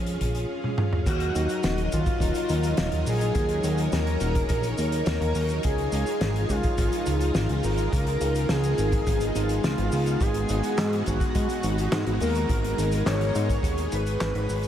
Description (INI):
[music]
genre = synthwave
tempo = 105 BPM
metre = 4/4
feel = straight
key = Eb minor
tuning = A4 = 441 Hz
[part]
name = string machine, full ensemble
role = sustained chords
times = 0.0-14.7 s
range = Gb3 to F5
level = -30 LUFS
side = equal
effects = ensemble chorus, sidechain pumping
[part]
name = fat analog bass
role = bass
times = 0.0-14.7 s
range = Eb1 to Ab2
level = -26 LUFS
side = equal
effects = tube saturation, sidechain pumping
[part]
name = loose indie drum kit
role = drums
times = 0.1-14.7 s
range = cabasa, crash cymbal, handclaps, hi-hat, snare drum, toms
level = -32 LUFS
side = equal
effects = none
[part]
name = kick drum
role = drums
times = 0.2-13.7 s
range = none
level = -27 LUFS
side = equal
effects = none
[part]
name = soft octave-layered synth lead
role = melody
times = 1.1-14.7 s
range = F4 to Db5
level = -31 LUFS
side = left 1 dB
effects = chorus, phaser, diffuse ambient delay
[part]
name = airy dreamy lead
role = second line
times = 1.1-14.7 s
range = F4 to Db5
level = -34 LUFS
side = equal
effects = chorus, diffuse ambient delay
[sound]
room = moderate huge ambient reverb, RT60 7.7 s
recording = dreamy mix soaked in reverb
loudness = -22 LUFS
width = side -10 dB against mid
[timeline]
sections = 0.0-1.1 A section; 1.1-14.7 B section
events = drum fill 0.6-1.1; fade-out 13.3-14.7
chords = 0.0 Bbm; 1.1 Ebm; 5.6 Dbadd9; 10.2 Abm7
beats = 0.49 | 1.07 1.64 2.21 2.78 | 3.35 3.92 4.50 5.07 | 5.64 6.21 6.78 7.35 | 7.92 8.49 9.07 9.64 | 10.21 10.78 11.35 11.92 | 12.49 13.07 13.64 14.21